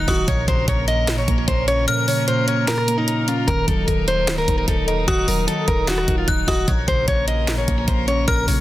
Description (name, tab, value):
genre	hip hop, trap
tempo	150 BPM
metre	4/4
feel	half-time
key	Bb minor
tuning	A4 = 443 Hz
part	picked plugged-in steel-string acoustic guitar	melody	0.0-8.6 s	Eb4 to Eb5	-22 LUFS	left 1 dB	low-pass filter, tape echo
part	metallic FM bell	second line	0.0-8.6 s	Eb6 to Gb6	-27 LUFS	left 3 dB	chorus, tape echo
part	muted felt-like synth keys	accompaniment	0.0-8.6 s	Bb2 to Eb5	-25 LUFS	right 1 dB	chorus, low-pass filter
part	warm chamber string section	sustained chords	0.0-8.6 s	F3 to Bb4	-29 LUFS	equal	none
part	warm 808-style bass	bass	0.0-8.6 s	Db1 to Bb1	-24 LUFS	equal	none
part	trap drum kit	drums	0.1-8.6 s	handclaps, hi-hat, kick drum, rim click, snare drum	-22 LUFS	equal	none
room	digital ambience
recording	dense, heavily limited modern master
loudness	-17 LUFS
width	side -15 dB against mid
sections	0.0-8.6 A section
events	kick muted 1.9-3.5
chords	0.3 Bbm; 3.5 Ebm; 6.7 Bbm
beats	| 0.28 0.68 1.08 1.48 | 1.88 2.28 2.68 3.08 | 3.48 3.88 4.28 4.68 | 5.08 5.48 5.88 6.28 | 6.68 7.08 7.48 7.88 | 8.28